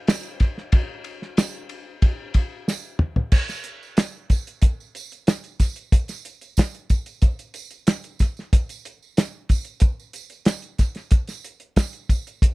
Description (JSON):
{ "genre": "rock", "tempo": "92 BPM", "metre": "4/4", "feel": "straight", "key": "none", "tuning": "none", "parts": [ { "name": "cloth-damped thuddy drum kit", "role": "drums", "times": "0.1-12.5 s", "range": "crash cymbal, hi-hat, kick drum, ride cymbal, snare drum, toms", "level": "-18 LUFS", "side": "equal", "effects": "none" }, { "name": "tambourine", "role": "percussion", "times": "0.1-12.5 s", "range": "none", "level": "-38 LUFS", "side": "right 8 dB", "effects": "none" } ], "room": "little or no reverb", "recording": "dry, close 1970s-style studio recording", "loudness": "-20 LUFS", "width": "side -23 dB against mid", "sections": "0.0-3.3 A section; 3.3-12.5 B section", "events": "drum fill 2.7-3.3", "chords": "none" }